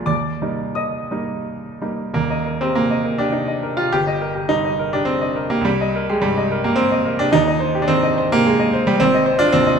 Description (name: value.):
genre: classical, romantic character piece for solo piano.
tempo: 84-115 BPM.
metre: 3/4.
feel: rubato.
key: Eb major.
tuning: A4 = 440 Hz.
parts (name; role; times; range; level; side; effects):
clear baby grand piano; solo; 0.0-9.8 s; Eb1 to Eb6; -16 LUFS; right 1 dB; none.
room: wet recital hall reverb, RT60 1.4 s.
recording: none.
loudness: -16 LUFS.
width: side -6 dB against mid.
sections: 0.0-2.2 A section; 2.2-9.8 B section.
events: none.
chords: 0.1 Eb; 3.9 Eb/G; 5.6 Cm7; 7.3 Cm/Eb; 9.0 Fm7/Ab.